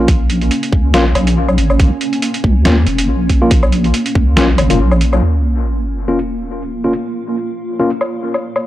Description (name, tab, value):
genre	deep dubstep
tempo	140 BPM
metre	4/4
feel	swing 56% on 16ths, half-time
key	Bb minor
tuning	A4 = 440 Hz
part	granular cloud pad	sustained chords	0.0-8.7 s	Bb3 to F4	-20 LUFS	equal	built-in reverb
part	tine electric piano	stabs	0.0-7.9 s	Bb3 to F4	-18 LUFS	left 2 dB	auto-pan, dub echo
part	deep soft wobble bass	bass	0.0-5.2 s	F1 to Eb2	-13 LUFS	equal	chorus
part	electronic kick drum	drums	0.1-4.2 s	none	-13 LUFS	equal	none
part	trip hop sampler-style drum kit	drums	0.1-5.2, 8.0-8.6 s	hi-hat, snare drum, woodblock	-18 LUFS	equal	low-pass filter on hats, low-pass filter on snare, low-pass filter on perc
part	sub drop	sound effects	5.2-6.9 s	none	-18 LUFS	equal	none
room	little or no reverb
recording	dry, gritty hardware recording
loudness	-12 LUFS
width	side -14 dB against mid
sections	0.0-5.2 A section; 5.2-8.7 B section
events	impact 5.2-6.9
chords	0.0 Bbm; 5.2 Bb5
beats	| 0.08 0.51 0.94 1.37 | 1.80 2.23 2.65 3.08 | 3.51 3.94 4.37 4.80 | 5.23 5.65 6.08 6.51 | 6.94 7.37 7.80 8.23 | 8.65